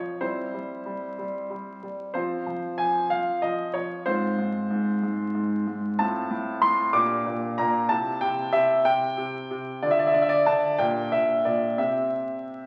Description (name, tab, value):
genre	classical-period piano sonatina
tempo	62 BPM (dotted quarters)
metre	6/8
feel	straight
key	F minor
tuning	A4 = 441 Hz
part	clear concert grand piano	solo	0.0-12.7 s	Ab2 to D6	-26 LUFS	equal	none
room	wet recital hall reverb, RT60 1.5 s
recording	very old 78 rpm record, vinyl crackle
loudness	-25 LUFS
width	mono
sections	0.0-12.7 A section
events	none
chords	0.2 C/G; 2.2 F5; 4.1 Fm/Ab; 6.0 F/A; 7.0 Gm/Bb; 7.9 C; 9.8 Dm; 10.8 Gm/Bb; 11.8 C